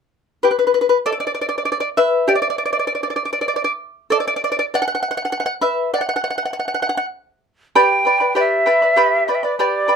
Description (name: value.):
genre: andean folk, Andean ensemble.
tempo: 66 BPM (dotted quarters).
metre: 6/8.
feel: straight.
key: unclear.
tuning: A4 = 440 Hz.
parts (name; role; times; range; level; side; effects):
charango; accompaniment; 0.4-10.0 s; G4 to B5; -17 LUFS; equal; none.
breathy mellow quena; melody; 7.8-10.0 s; D5 to G5; -16 LUFS; right 1 dB; slapback echo.
room: light reverb.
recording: close, detailed microphones.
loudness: -16 LUFS.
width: side -6 dB against mid.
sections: 0.4-7.8 A section; 7.8-10.0 B section.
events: charango solo 0.4-7.8.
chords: 0.4 G (rootless); 4.1 Bm (rootless); 7.8 G.